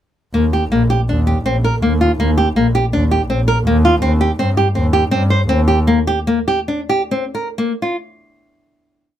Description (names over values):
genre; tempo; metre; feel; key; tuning
contemporary instrumental, chamber music in an uneven meter; 162 BPM; 5/4; uneven beats; Eb major; A4 = 440 Hz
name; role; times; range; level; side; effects
nylon-string guitar; arpeggios; 0.3-8.0 s; Bb3 to C5; -16 LUFS; equal; none
rich double bass; bass; 0.3-5.8 s; Bb1 to G2; -16 LUFS; equal; none
room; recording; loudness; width
little or no reverb; close, detailed microphones; -14 LUFS; side -11 dB against mid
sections
0.3-8.1 A section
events
slowing down 4.8-8.1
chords
0.3 Eb; 4.0 Cm/Eb; 5.9 Bb5